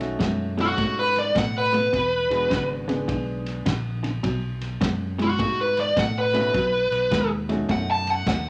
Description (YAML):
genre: electric blues shuffle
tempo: 104 BPM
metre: 4/4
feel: swing 65% on 8ths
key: unclear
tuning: A4 = 440 Hz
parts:
  - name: warm upright piano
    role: accompaniment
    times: 0.0-8.2 s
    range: G#3 to A4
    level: -34 LUFS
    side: equal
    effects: none
  - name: electric guitar through a small old amp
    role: riff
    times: 0.0-8.5 s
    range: E2 to A3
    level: -30 LUFS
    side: equal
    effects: none
  - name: fingered electric bass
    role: bass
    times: 0.0-8.5 s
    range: E1 to A2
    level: -33 LUFS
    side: equal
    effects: none
  - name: warm soul drum kit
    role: drums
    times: 0.0-8.4 s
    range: kick drum, ride cymbal, snare drum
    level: -33 LUFS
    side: equal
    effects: none
  - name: smooth overdriven lead guitar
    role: melody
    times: 0.6-8.5 s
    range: F#4 to A5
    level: -24 LUFS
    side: equal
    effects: none
room: light reverb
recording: none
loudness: -24 LUFS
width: mono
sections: 0.0-8.5 A section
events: none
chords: 0.0 B7; 1.9 E7; 4.2 B7